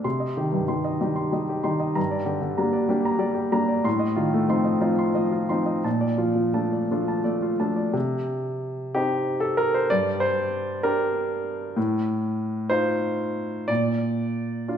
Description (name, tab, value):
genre	neoclassical minimalist piano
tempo	56-65 BPM (dotted quarters)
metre	6/8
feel	rubato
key	C dorian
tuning	A4 = 438 Hz
part	clear baby grand piano	solo	0.0-14.8 s	G2 to C6	-22 LUFS	equal	none
room	wet recital hall reverb, RT60 1.5 s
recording	recorded in a church or concert hall, nothing above 10.4 kHz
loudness	-22 LUFS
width	side -8 dB against mid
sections	0.0-7.9 A section; 7.9-14.8 B section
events	none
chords	0.0 Cm; 2.0 Gm; 3.9 F7/A; 5.8 Bbmaj7; 7.9 Cm; 9.9 Gm; 11.8 F7/A; 13.7 Bb